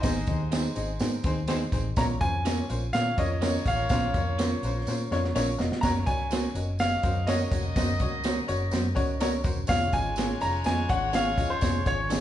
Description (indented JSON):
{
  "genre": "uptempo 1960s-style soul",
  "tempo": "124 BPM",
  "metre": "4/4",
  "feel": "straight",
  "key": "unclear",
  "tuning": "A4 = 440 Hz",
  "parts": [
    { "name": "bright concert grand piano", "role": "melody", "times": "0.0-12.2 s", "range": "C5 to Bb5", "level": "-29 LUFS", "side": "equal", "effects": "none" },
    { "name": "warm horn section", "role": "second line", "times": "0.0-12.2 s", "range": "Ab3 to Eb5", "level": "-36 LUFS", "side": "left 1 dB", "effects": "none" },
    { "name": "bright upright piano", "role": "accompaniment", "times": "0.0-12.2 s", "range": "Ab2 to Bb5", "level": "-32 LUFS", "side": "left 2 dB", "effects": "none" },
    { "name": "vintage muted fingered electric bass", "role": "bass", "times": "0.0-12.2 s", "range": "Fb1 to Bb2", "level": "-30 LUFS", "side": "equal", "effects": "none" },
    { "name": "compact cocktail drum kit", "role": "drums", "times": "0.0-12.2 s", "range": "crash cymbal, hi-hat, kick drum, snare drum", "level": "-29 LUFS", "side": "right 1 dB", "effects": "none" },
    { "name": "tambourine", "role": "percussion", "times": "0.0-12.2 s", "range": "none", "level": "-42 LUFS", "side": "right 4 dB", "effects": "none" },
    { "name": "electric guitar through a small old amp", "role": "stabs", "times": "0.5-12.2 s", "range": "C4 to Db5", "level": "-36 LUFS", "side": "right 3 dB", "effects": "none" }
  ],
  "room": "wet large studio reverb, RT60 1.1 s",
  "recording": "band playing live in one room, nothing above 10.6 kHz",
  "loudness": "-24 LUFS",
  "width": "side -12 dB against mid",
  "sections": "0.0-12.2 A section",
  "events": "drum fill 4.9-5.8; upright piano fill 8.7-9.7",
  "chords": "0.0 Ab; 2.0 Bbm; 5.8 Gb; 9.7 Db",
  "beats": "| 0.04 0.52 1.01 1.49 | 1.97 2.45 2.94 3.42 | 3.90 4.38 4.87 5.35 | 5.83 6.31 6.79 7.28 | 7.76 8.24 8.72 9.20 | 9.69 10.17 10.65 11.13 | 11.62 12.10"
}